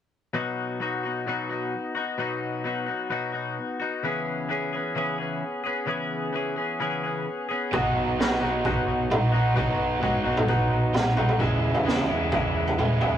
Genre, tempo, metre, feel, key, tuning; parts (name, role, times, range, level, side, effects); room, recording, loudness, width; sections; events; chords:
indie rock; 130 BPM; 4/4; straight; B major; A4 = 441 Hz
twelve-string electric guitar; riff; 0.3-13.2 s; B2 to G#4; -27 LUFS; left 3 dB
crunchy overdriven guitar; riff; 7.7-13.2 s; B2 to F#4; -26 LUFS; right 2 dB
deep dub fingered electric bass; bass; 7.7-13.2 s; B1 to G#2; -34 LUFS; equal
raw garage drum kit; drums; 7.7-13.1 s; kick drum, snare drum, toms; -24 LUFS; equal
moderate booth ambience, RT60 0.3 s; rough rehearsal-room recording; -23 LUFS; side -10 dB against mid
0.4-13.2 A section
0.4 B; 4.0 C#m7; 7.7 B; 11.4 C#m7